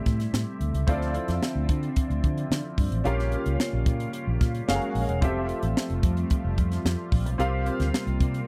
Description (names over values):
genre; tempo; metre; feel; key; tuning
polished 1980s jazz-funk pop; 110 BPM; 4/4; straight; F major; A4 = 440 Hz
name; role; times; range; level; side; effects
warm concert grand piano; accompaniment; 0.0-8.5 s; C4 to F5; -33 LUFS; equal; ensemble chorus
chorused pulse-width pad; sustained chords; 0.0-8.5 s; C3 to E5; -37 LUFS; equal; none
vintage muted fingered electric bass; bass; 0.1-8.4 s; E1 to D3; -30 LUFS; equal; none
crisp fusion drum kit; drums; 0.1-8.5 s; hi-hat, kick drum, snare drum; -28 LUFS; equal; none
room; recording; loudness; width
little or no reverb; dry, close 1970s-style studio recording; -26 LUFS; mono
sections
0.0-8.5 A section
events
none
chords
0.0 Am7; 0.9 Dm9; 3.0 Bbm6; 4.7 Gbmaj9; 5.2 Fmaj9; 7.4 C7sus4